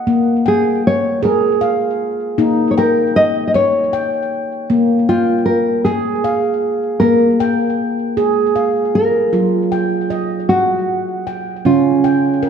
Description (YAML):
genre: world meditative, meditative tuned percussion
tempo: 52 BPM (dotted quarters)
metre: 6/8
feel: straight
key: unclear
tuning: A4 = 440 Hz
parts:
  - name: handpan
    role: arpeggios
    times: 0.0-12.5 s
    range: Db3 to G5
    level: -15 LUFS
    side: equal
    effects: ping-pong delay
  - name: nylon-string guitar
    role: melody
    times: 0.5-12.5 s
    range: F4 to Eb5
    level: -16 LUFS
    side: equal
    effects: none
room: wet echo chamber reverb, RT60 1.9 s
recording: tape saturation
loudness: -13 LUFS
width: side -7 dB against mid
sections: 0.0-9.3 A section; 9.3-12.5 B section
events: none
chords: 0.1 Bb5; 2.4 Eb5/Bb; 4.7 Bb5; 9.3 Gb; 11.7 Db